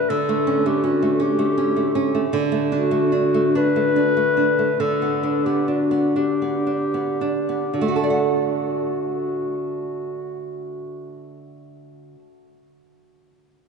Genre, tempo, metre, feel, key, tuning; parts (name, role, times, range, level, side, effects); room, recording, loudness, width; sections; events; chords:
romantic duo for clarinet and classical guitar; 35-54 BPM (dotted quarters); 6/8; rubato; D major; A4 = 436 Hz
warm clarinet; melody; 0.0-11.5 s; F#4 to B4; -23 LUFS; left 2 dB
nylon-string guitar; accompaniment; 0.0-12.3 s; D3 to F#5; -21 LUFS; right 2 dB
wet cathedral reverb, RT60 4.8 s; recorded in a church or concert hall, nothing above 10.9 kHz; -18 LUFS; side -5 dB against mid
0.0-7.7 A section; 7.7-10.7 B section
slowing down 1.2-7.7
0.1 A7/D; 2.3 D; 4.8 G/D; 7.7 D